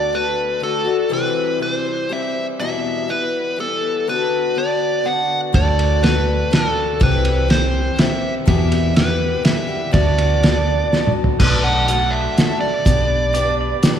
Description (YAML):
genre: folk rock and heartland rock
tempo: 123 BPM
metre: 3/4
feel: straight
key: unclear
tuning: A4 = 440 Hz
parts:
  - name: nasal lead guitar with a parked wah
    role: melody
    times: 0.0-13.5 s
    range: A4 to F#5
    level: -20 LUFS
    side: equal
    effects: overdrive
  - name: picked acoustic archtop guitar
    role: accompaniment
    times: 0.0-14.0 s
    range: E2 to B4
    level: -22 LUFS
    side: left 4 dB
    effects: none
  - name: hollow-body short-scale fingered electric bass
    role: bass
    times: 5.5-13.7 s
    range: B1 to E2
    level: -20 LUFS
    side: right 1 dB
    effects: none
  - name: cloth-damped thuddy drum kit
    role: drums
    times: 5.5-13.9 s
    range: crash cymbal, hi-hat, kick drum, ride cymbal, snare drum, toms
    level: -18 LUFS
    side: right 1 dB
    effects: none
  - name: pedal steel guitar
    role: second line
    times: 13.3-14.0 s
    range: D5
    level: -24 LUFS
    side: right 4 dB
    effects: none
room: wet church reverb, RT60 3.0 s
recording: recorded in a church or concert hall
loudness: -15 LUFS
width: side -9 dB against mid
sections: 0.0-11.4 A section; 11.4-14.0 B section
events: drum fill 10.9-11.4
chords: 0.0 D; 1.1 C; 2.6 Em; 4.1 Bm/D; 5.5 D; 7.0 C; 8.5 Em; 9.9 Bm/D; 11.4 Bm7; 12.9 G/B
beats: 0.14 0.63 | 1.12 1.61 2.10 | 2.60 3.09 3.58 | 4.07 4.56 5.05 | 5.54 6.03 6.52 | 7.01 7.50 7.99 | 8.47 8.96 9.45 | 9.94 10.43 10.91 | 11.40 11.89 12.37 | 12.86 13.35 13.83